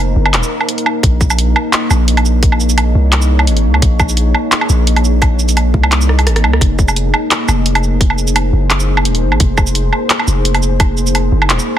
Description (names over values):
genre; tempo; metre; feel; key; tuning
half-time drum and bass; 172 BPM; 4/4; swing 54% on 16ths, half-time; F phrygian; A4 = 443 Hz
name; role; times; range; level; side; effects
deep dark ambient pad; sustained chords; 0.0-11.8 s; Bb3 to Db5; -18 LUFS; equal; chorus, built-in reverb, sidechain pumping
long sustained 808-style bass; bass; 0.0-11.6 s; Eb1 to Db2; -13 LUFS; equal; none
drum and bass drum kit; drums; 0.3-11.8 s; handclaps, hi-hat, rim click, shaker, woodblock; -15 LUFS; right 2 dB; none
electronic kick drum; drums; 1.0-10.9 s; none; -13 LUFS; equal; none
room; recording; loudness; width
digital ambience; dense, heavily limited modern master; -10 LUFS; side -11 dB against mid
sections
0.0-11.8 A section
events
drum fill 6.1-6.6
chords
0.0 F5; 1.0 Bbm; 6.6 Fm